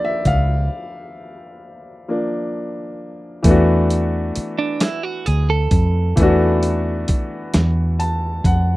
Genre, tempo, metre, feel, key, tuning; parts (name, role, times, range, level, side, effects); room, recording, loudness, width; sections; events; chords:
slow six-eight R&B; 44 BPM (dotted quarters); 6/8; straight; A4 = 441 Hz
warm baby grand piano; accompaniment; 0.0-8.8 s; E3 to A5; -21 LUFS; left 2 dB
vintage muted fingered electric bass; bass; 0.0-8.8 s; C2 to F2; -17 LUFS; equal
dusty soul sampler-style drum kit; drums; 0.3-8.7 s; hi-hat, kick drum, snare drum; -19 LUFS; equal
semi-hollow electric guitar; second line; 4.6-6.8 s; D4 to A4; -24 LUFS; right 5 dB
little or no reverb; rough home demo mix; -16 LUFS; side -18 dB against mid
0.0-3.4 A section; 3.4-8.8 B section
grand piano solo 0.0-3.4; break 0.7-3.4; grand piano fill 7.5-8.8
0.0 C9sus4; 3.4 E9sus4